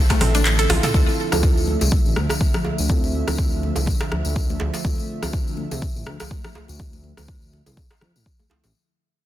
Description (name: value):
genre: afro house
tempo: 123 BPM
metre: 4/4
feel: swing 56% on 16ths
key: D minor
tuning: A4 = 439 Hz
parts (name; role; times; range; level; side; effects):
- warm analog pad; sustained chords; 0.0-8.7 s; D3 to E5; -30 LUFS; right 1 dB; chorus, sidechain pumping
- deep mellow chord stab; stabs; 0.0-8.7 s; C4 to A4; -29 LUFS; right 3 dB; chorus, phaser, sidechain pumping, digital delay
- smooth gliding synth bass; bass; 0.0-8.7 s; A1 to F2; -24 LUFS; equal; sidechain pumping
- mallet-like synth pluck; arpeggios; 0.1-0.9 s; A3 to A4; -26 LUFS; left 1 dB; chorus, sidechain pumping, digital delay
- deep house drum kit; drums; 0.1-8.1 s; handclaps, hi-hat, rim click, toms; -26 LUFS; equal; overdrive
- electronic kick drum; drums; 0.1-8.4 s; none; -21 LUFS; equal; overdrive
- djembe; percussion; 0.1-8.7 s; none; -30 LUFS; right 2 dB; none
- tambourine; percussion; 0.1-8.7 s; none; -32 LUFS; left 5 dB; none
- congas; percussion; 0.2-8.7 s; none; -33 LUFS; left 4 dB; none
room: little or no reverb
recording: dense, heavily limited modern master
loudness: -18 LUFS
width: side -13 dB against mid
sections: 0.9-8.7 A section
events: kick drops out 0.5-0.9; fade-out 0.9-8.7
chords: 0.0 Dm7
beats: 0.45 | 0.94 1.43 1.92 2.40 | 2.89 3.38 3.87 4.36 | 4.84 5.33 5.82 6.31 | 6.80 7.28 7.77 8.26